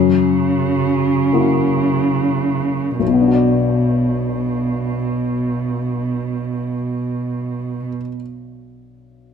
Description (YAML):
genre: classical, slow romantic movement for piano trio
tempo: 39 BPM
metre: 4/4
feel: rubato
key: B minor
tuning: A4 = 440 Hz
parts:
  - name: warm cello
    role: second line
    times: 0.0-7.9 s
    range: B2 to C#3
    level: -19 LUFS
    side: right 4 dB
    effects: none
  - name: warm baby grand piano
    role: accompaniment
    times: 0.0-9.3 s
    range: B1 to D5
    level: -19 LUFS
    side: left 6 dB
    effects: none
room: moderate recital hall reverb, RT60 1.6 s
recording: none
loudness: -16 LUFS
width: side -7 dB against mid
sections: 0.0-3.0 A section; 3.0-9.2 B section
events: slowing down 0.0-3.0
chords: 0.0 F#7; 3.0 Bm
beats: 1.33 | 3.00 4.52 6.06 7.63